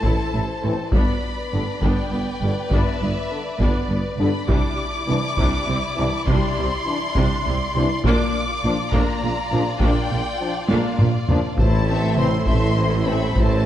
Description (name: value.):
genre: cinematic, epic orchestral film score.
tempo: 68 BPM (dotted quarters).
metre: 12/8.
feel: straight.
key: unclear.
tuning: A4 = 440 Hz.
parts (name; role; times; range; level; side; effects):
warm symphonic violin section; melody; 0.0-13.7 s; D5 to D6; -28 LUFS; left 2 dB; none.
warm symphonic violin section; second line; 0.0-13.7 s; E4 to E5; -30 LUFS; left 2 dB; none.
warm symphonic viola section; accompaniment; 0.0-13.7 s; F3 to A4; -27 LUFS; left 1 dB; none.
rich symphonic cello section; bass; 0.0-13.7 s; G2 to C3; -27 LUFS; right 2 dB; none.
warm symphonic double bass section; bass; 0.0-13.7 s; G1 to C2; -26 LUFS; right 2 dB; none.
warm tuba; bass; 0.0-13.7 s; G1 to C2; -28 LUFS; right 2 dB; none.
solo taiko drums; drums; 0.0-13.7 s; none; -23 LUFS; equal; none.
mellow French horn section; sustained chords; 0.6-13.2 s; D3 to D4; -28 LUFS; left 4 dB; none.
timpani; percussion; 11.6-12.4 s; A2; -27 LUFS; left 2 dB; none.
room: moderate scoring stage reverb, RT60 1.6 s.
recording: dark, warm production.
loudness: -18 LUFS.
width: side -12 dB against mid.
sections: 0.0-13.7 A section.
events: drum fill 10.7-11.6.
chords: 0.0 Am; 0.9 G; 4.5 Cadd9; 8.1 Bb; 11.6 Am.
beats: 0.04 | 0.93 1.82 2.72 3.60 | 4.49 5.39 6.28 7.16 | 8.05 8.94 9.82 10.71 | 11.59 12.47 13.36.